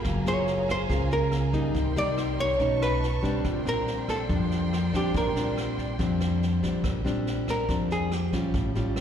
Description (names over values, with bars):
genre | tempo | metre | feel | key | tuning
bossa nova | 141 BPM | 4/4 | straight | Bb major | A4 = 440 Hz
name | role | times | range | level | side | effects
nylon-string guitar | accompaniment | 0.0-9.0 s | A2 to Ab4 | -28 LUFS | left 2 dB | slapback echo
warm studio violin section | sustained chords | 0.0-6.8 s | Bb3 to C#6 | -36 LUFS | right 1 dB | none
upright bass | bass | 0.0-9.0 s | Gb1 to F2 | -31 LUFS | right 1 dB | none
jazz brush drum kit | drums | 0.0-9.0 s | kick drum, rim click, snare drum | -34 LUFS | right 1 dB | none
archtop guitar, miked and amplified | melody | 0.3-8.8 s | G4 to D5 | -29 LUFS | right 1 dB | slapback echo
room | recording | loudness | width
moderate club reverb, RT60 0.7 s | live gig heard through the venue's PA, recital hall reverb | -24 LUFS | side -8 dB against mid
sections
0.0-6.8 A section; 6.8-9.0 B section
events
hollow-body jazz guitar solo 6.8-9.0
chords
0.0 Gbmaj9; 1.7 Cm7; 2.6 B9; 3.4 Bb69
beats
| 0.04 0.47 0.90 1.32 | 1.74 2.17 2.59 3.02 | 3.44 3.87 4.29 4.72 | 5.14 5.57 5.99 6.42 | 6.84 7.26 7.69 8.11 | 8.54 8.96